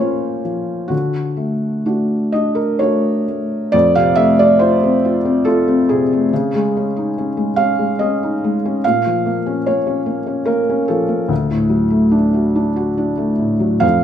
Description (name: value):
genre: neoclassical minimalist piano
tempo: 63-73 BPM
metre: 3/4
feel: rubato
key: unclear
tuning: A4 = 437 Hz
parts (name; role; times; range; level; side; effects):
- felt-muted upright piano; solo; 0.0-14.0 s; D2 to F5; -14 LUFS; equal; none
room: wet recital hall reverb, RT60 1.6 s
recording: minimal, uncompressed stereo recording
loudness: -14 LUFS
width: side -9 dB against mid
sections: 0.0-3.7 A section; 3.7-14.0 B section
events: none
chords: 0.0 Bbm; 0.9 D; 3.7 F; 6.3 Dbsus2; 8.8 Bbm; 11.3 D